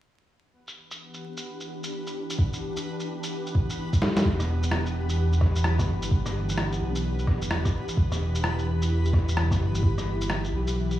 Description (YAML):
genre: future garage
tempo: 129 BPM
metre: 4/4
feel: swing 63% on 16ths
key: E minor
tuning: A4 = 440 Hz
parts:
  - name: ethereal airy pad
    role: sustained chords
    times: 1.1-11.0 s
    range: E3 to G4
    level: -31 LUFS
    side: equal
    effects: ensemble chorus, built-in reverb, vintage 12-bit sampler grit, sidechain pumping
  - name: backwards swelling texture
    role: texture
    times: 1.1-11.0 s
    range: B3 to B4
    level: -39 LUFS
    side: equal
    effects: built-in reverb
  - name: electronic shaker, snare drum and rim click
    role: drums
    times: 0.7-11.0 s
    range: none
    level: -31 LUFS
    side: equal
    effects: low-pass filter on perc, low-pass filter on snare, low-pass filter on room
  - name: electronic kick drum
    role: drums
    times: 2.4-9.9 s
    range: none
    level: -23 LUFS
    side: equal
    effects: overdrive
  - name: dark detuned saw bass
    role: bass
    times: 4.2-11.0 s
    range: E1 to B1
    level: -26 LUFS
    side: equal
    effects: sidechain pumping
room: digital ambience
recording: played on a big sound system in a bare room, stone room reverb, vinyl crackle, small room ambience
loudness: -24 LUFS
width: side -13 dB against mid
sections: 0.5-4.2 A section; 4.2-11.0 B section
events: filter sweep on drum 0.5-4.2; drum fill 4.0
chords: 0.5 Em7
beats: | 0.53 0.99 1.46 1.92 | 2.39 2.85 3.32 3.78 | 4.25 4.71 5.18 5.64 | 6.11 6.58 7.04 7.50 | 7.97 8.44 8.90 9.37 | 9.83 10.30 10.76